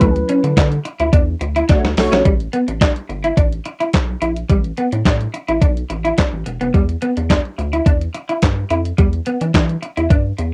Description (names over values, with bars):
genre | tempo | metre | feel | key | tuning
early-eighties boogie funk | 107 BPM | 4/4 | straight | unclear | A4 = 440 Hz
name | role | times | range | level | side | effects
mellow synth brass | second line | 0.0-2.2 s | A3 to C#5 | -20 LUFS | equal | chorus, cassette tape
tine electric piano | accompaniment | 0.0-0.7 s | F#3 to B4 | -22 LUFS | equal | cassette tape
electric guitar at the edge of break-up | riff | 0.0-10.4 s | G3 to E4 | -22 LUFS | equal | analog chorus, cassette tape
rubbery square bass | bass | 0.0-10.5 s | E1 to E3 | -23 LUFS | equal | none
clean 12-bit digital drum machine | drums | 0.0-10.5 s | handclaps, hi-hat, kick drum, snare drum | -17 LUFS | equal | cassette tape
room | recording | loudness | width
light reverb | home recording on cassette | -17 LUFS | mono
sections
0.0-2.3 A section; 2.3-10.5 B section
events
tine electric piano solo 0.0-2.3; drum fill 1.7-2.3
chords
0.0 Dmaj9; 2.3 Asus4; 6.5 Em7